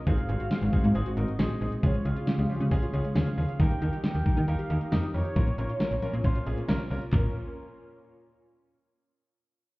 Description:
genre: synth-pop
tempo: 136 BPM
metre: 4/4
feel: straight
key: Bb dorian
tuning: A4 = 440 Hz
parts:
  - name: mellow horn-like synth lead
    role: melody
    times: 0.0-7.3 s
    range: Bb4 to G5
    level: -38 LUFS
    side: right 1 dB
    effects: chorus, digital delay
  - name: warm analog pad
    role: sustained chords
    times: 0.0-7.3 s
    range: Bb2 to Bb4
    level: -36 LUFS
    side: equal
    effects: wide subtle chorus
  - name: bright concert grand piano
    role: accompaniment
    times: 0.1-7.3 s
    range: C4 to C5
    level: -37 LUFS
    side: right 1 dB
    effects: none
  - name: analog pluck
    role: arpeggios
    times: 0.1-7.3 s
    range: F3 to G4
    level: -35 LUFS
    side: left 1 dB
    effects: none
  - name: slap-like FM bass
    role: bass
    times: 0.1-7.3 s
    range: Ab1 to Eb3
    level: -28 LUFS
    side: equal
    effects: none
  - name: pop drum kit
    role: drums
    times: 0.1-7.2 s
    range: handclaps, hi-hat, kick drum, snare drum, toms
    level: -27 LUFS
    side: equal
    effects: none
room: light reverb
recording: heard muffled through a wall, club reverb, EQ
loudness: -25 LUFS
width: side -21 dB against mid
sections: 0.0-7.1 A section; 7.1-8.9 B section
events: none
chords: 0.1 Ab7; 1.8 Db; 3.6 Eb; 5.4 Bbm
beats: | 0.07 0.51 0.95 1.39 | 1.83 2.27 2.71 3.16 | 3.60 4.04 4.48 4.92 | 5.36 5.80 6.24 6.68 | 7.13

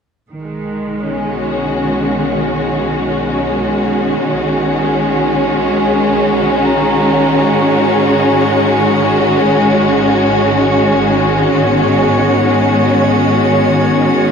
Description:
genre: ambient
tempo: free time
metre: none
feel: none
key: B major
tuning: A4 = 440 Hz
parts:
  - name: warm studio string section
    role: sustained chords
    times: 0.3-14.3 s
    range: D#3 to F#4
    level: -12 LUFS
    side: equal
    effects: none
  - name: warm studio double bass section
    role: bass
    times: 0.3-14.3 s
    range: G#1 to B1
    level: -25 LUFS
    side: right 1 dB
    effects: none
  - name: drifting glass-harmonics texture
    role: texture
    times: 2.2-14.3 s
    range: C#5 to C#6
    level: -25 LUFS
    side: right 2 dB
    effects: chorus, built-in reverb
  - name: vibraphone with soft mallets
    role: arpeggios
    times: 1.1-14.3 s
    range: B3 to A#5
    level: -23 LUFS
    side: left 2 dB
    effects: none
room: wet cathedral reverb, RT60 6.5 s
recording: in a vast, echoing space, cassette tape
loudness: -11 LUFS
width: side -6 dB against mid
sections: 0.3-14.3 A section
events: fade-in on double bass section 0.3-14.3; fade-in on synth texture 0.3-14.3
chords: 0.3 B69; 7.5 G#m9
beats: free time

